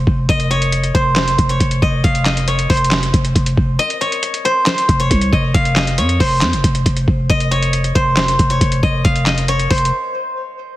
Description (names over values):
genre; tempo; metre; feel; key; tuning
hip hop, trap; 137 BPM; 4/4; half-time; unclear; A4 = 440 Hz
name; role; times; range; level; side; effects
steel-string zither; melody; 0.0-10.8 s; C5 to F5; -18 LUFS; left 1 dB; none
growling 808-style bass; bass; 0.0-9.9 s; F1 to F2; -17 LUFS; equal; none
dusty soul sampler-style drum kit; drums; 0.1-9.9 s; handclaps, hi-hat, kick drum, snare drum; -17 LUFS; equal; vintage 12-bit sampler grit
room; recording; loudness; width
light reverb, digital ambience; heavily compressed radio sound; -13 LUFS; side -15 dB against mid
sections
0.0-10.8 A section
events
kick muted 3.8-4.7; break 9.9-10.8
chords
0.0 F5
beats
| 0.29 0.73 1.17 1.60 | 2.04 2.48 2.92 3.35 | 3.79 4.23 4.67 5.11 | 5.54 5.98 6.42 6.86 | 7.30 7.74 8.17 8.61 | 9.05 9.49 9.92 10.36